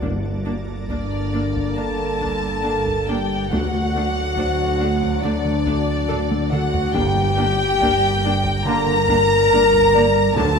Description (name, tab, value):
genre	cinematic, suspense film score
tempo	70 BPM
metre	4/4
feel	straight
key	G harmonic minor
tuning	A4 = 439 Hz
part	warm chamber viola section	accompaniment	0.0-10.5 s	F#3 to A4	-28 LUFS	right 2 dB	none
part	bright trombone section	sustained chords	0.0-10.6 s	D3 to Bb3	-31 LUFS	right 4 dB	none
part	soft additive organ-like pad	sustained chords	0.0-10.6 s	F#4 to Bb5	-35 LUFS	right 2 dB	ensemble chorus, built-in reverb
part	dark studio double bass section	bass	0.0-10.6 s	G1 to D2	-27 LUFS	right 4 dB	none
part	warm chamber cello section	bass	0.0-10.6 s	D2 to G2	-28 LUFS	right 3 dB	none
part	warm sub bass	drone	0.0-10.6 s	G1 to D2	-30 LUFS	equal	none
part	taiko ensemble	drums	0.0-10.6 s	none	-30 LUFS	equal	none
part	timpani	percussion	0.0-10.6 s	G2 to D3	-30 LUFS	left 1 dB	none
part	music box	texture	0.0-10.6 s	Bb4 to D5	-33 LUFS	equal	none
part	warm chamber violin section	melody	0.9-10.6 s	D5 to Bb5	-26 LUFS	left 4 dB	none
part	warm chamber violin section	second line	0.9-10.6 s	D5 to Bb5	-25 LUFS	left 1 dB	none
part	mellow French horn section	sustained chords	0.9-10.6 s	D4 to Bb4	-21 LUFS	left 3 dB	none
room	wet concert hall reverb, RT60 2.5 s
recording	none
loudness	-17 LUFS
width	side -5 dB against mid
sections	0.0-10.6 A section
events	drum fill 6.1-7.0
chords	0.0 Gmadd9; 3.5 D; 7.0 Gm